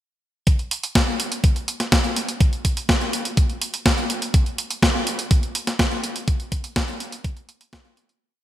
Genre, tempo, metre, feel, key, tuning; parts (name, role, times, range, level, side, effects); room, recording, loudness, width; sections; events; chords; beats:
italo disco; 124 BPM; 4/4; straight
clean 12-bit digital drum machine; drums; 0.5-8.2 s; hi-hat, snare drum; -22 LUFS; equal; studio reverb, gated reverb
electronic kick drum; drums; 0.5-7.8 s; -19 LUFS; equal; studio reverb
moderate lush hall reverb, RT60 1.9 s, digital ambience; bright 1980s-style digital production; -19 LUFS; side -13 dB against mid
0.5-8.2 verse
fade-out 5.6-8.2
| 0.47 0.95 1.44 1.92 | 2.41 2.89 3.37 3.86 | 4.34 4.83 5.31 5.79 | 6.28 6.76 7.24 7.73